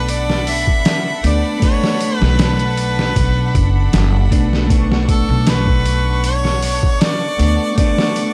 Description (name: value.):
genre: trip hop.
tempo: 78 BPM.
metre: 4/4.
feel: swing 53% on 16ths.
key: B minor.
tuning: A4 = 442 Hz.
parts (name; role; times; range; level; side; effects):
warm harmonica; melody; 0.0-8.3 s; A4 to E5; -24 LUFS; equal; tape echo.
semi-hollow electric guitar; accompaniment; 0.0-8.3 s; A3 to D4; -24 LUFS; equal; harmonic tremolo, vintage 12-bit sampler grit.
clear studio string section; sustained chords; 0.0-8.3 s; D4 to C#6; -28 LUFS; equal; none.
upright bass; bass; 0.0-7.6 s; F#1 to D2; -19 LUFS; equal; none.
trip hop sampler-style drum kit; drums; 0.1-8.3 s; hi-hat, kick drum, snare drum; -19 LUFS; equal; none.
room: small room ambience.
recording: dry, gritty hardware recording, transformer saturation, vinyl crackle.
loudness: -16 LUFS.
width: mono.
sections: 0.0-8.3 A section.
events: none.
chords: 0.0 Bm7.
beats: 0.08 0.85 | 1.62 2.39 3.16 3.92 | 4.70 5.46 6.23 7.00 | 7.77.